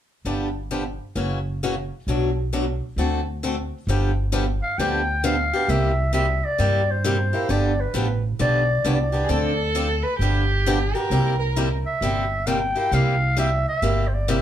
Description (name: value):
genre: acoustic string swing (jazz manouche)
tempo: 133 BPM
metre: 4/4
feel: swing 64% on 8ths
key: G major, G mixolydian from 3.9 s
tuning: A4 = 441 Hz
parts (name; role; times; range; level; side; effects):
- upright bass; bass; 0.2-14.4 s; F#1 to G2; -24 LUFS; equal; none
- picked swing-style acoustic guitar; accompaniment; 0.3-14.4 s; B2 to A4; -25 LUFS; left 1 dB; none
- growling clarinet; melody; 4.6-14.4 s; B4 to G5; -24 LUFS; equal; none
- warm violin; second line; 9.2-11.7 s; G4 to B4; -26 LUFS; right 3 dB; none
room: wet club reverb, RT60 0.7 s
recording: heard from further back in the room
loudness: -20 LUFS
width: side -10 dB against mid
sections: 0.3-3.9 A section; 3.9-14.4 B section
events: none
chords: 0.3 G7; 1.2 F#7; 2.1 Bm7; 3.0 D7; 3.9 G7; 5.7 C7; 7.5 G7; 9.3 Dm7; 10.2 G7; 11.1 C7